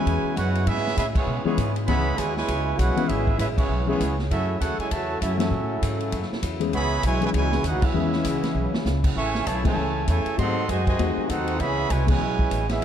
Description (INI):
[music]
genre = jazz, big band swing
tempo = 198 BPM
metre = 4/4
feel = swing 60% on 8ths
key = C# minor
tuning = A4 = 439 Hz
[part]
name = clear trumpet section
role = melody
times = 0.0-12.8 s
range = B3 to C#6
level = -28 LUFS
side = right 3 dB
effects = none
[part]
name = mellow trombone section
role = second line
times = 0.0-12.8 s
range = B2 to A4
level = -30 LUFS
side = right 3 dB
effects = none
[part]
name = dark grand piano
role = accompaniment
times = 0.0-12.2 s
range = E3 to G#4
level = -28 LUFS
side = left 6 dB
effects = none
[part]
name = warm trombone section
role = sustained chords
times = 0.0-12.8 s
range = B#2 to A4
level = -35 LUFS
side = left 2 dB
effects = none
[part]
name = upright bass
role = bass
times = 0.0-12.8 s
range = G#1 to B2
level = -26 LUFS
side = equal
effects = none
[part]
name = swinging big-band drum kit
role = drums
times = 0.1-12.8 s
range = crash cymbal, hi-hat, kick drum, ride cymbal, snare drum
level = -29 LUFS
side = equal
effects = none
[sound]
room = light reverb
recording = dark, warm production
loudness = -21 LUFS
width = side -9 dB against mid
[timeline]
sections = 0.0-12.8 A section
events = band accent 1.1, 3.5, 5.4, 7.8, 9.6, 12.1; drum fill 8.6-8.9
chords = 0.0 C#m7; 4.3 F#m7; 6.7 C#m7; 9.2 Amaj7; 10.4 G#7b9; 11.6 C#m7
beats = 0.06 0.36 | 0.67 0.97 1.27 1.57 | 1.88 2.18 2.48 2.79 | 3.09 3.39 3.70 4.00 | 4.30 4.61 4.91 5.21 | 5.52 5.82 6.13 6.43 | 6.73 7.04 7.34 7.64 | 7.95 8.25 8.55 8.86 | 9.16 9.47 9.77 10.07 | 10.38 10.68 10.99 11.29 | 11.60 11.90 12.20 12.51 | 12.81